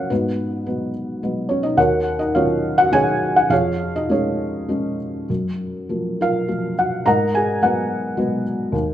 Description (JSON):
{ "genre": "classical, lyrical solo piano", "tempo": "99-109 BPM", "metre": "3/4", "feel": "rubato", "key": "unclear", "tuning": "A4 = 439 Hz", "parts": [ { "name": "felt-muted upright piano", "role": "solo", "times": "0.0-8.9 s", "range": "D#2 to A#5", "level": "-18 LUFS", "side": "equal", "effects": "none" } ], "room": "moderate recital hall reverb, RT60 1.4 s", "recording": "none", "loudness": "-18 LUFS", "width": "side -11 dB against mid", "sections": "0.0-8.9 A section", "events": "none", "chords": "0.1 G#m7; 1.8 D#m7; 3.5 A#m7/E#; 5.3 F#maj7; 7.1 G#m7", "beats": "| 0.11 0.66 1.22 | 1.77 2.35 2.93 | 3.51 4.10 4.70 | 5.30 5.90 6.48 | 7.05 7.62 8.18 | 8.73" }